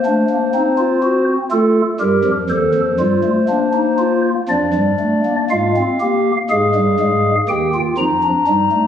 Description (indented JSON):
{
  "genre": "classical, baroque-style 3-part fugue for pipe organ",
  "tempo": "60 BPM",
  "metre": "4/4",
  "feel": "straight",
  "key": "Bb major",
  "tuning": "A4 = 440 Hz",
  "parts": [
    { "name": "pipe organ, stopped flute", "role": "solo", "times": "0.0-8.9 s", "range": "Eb2 to Bb5", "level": "-13 LUFS", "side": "left 1 dB", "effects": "none" }
  ],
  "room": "wet scoring stage reverb, RT60 1.6 s",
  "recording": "recorded on a phone in the room, club reverb",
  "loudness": "-13 LUFS",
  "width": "side -9 dB against mid",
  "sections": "0.0-5.5 A section; 5.5-8.9 B section",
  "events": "none",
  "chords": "0.0 Adim7; 1.5 F7; 3.5 Bb; 5.5 Bb5/Ab; 7.5 Eb",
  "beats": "0.53 | 1.51 2.50 3.49 4.49 | 5.50 6.50 7.49 8.48"
}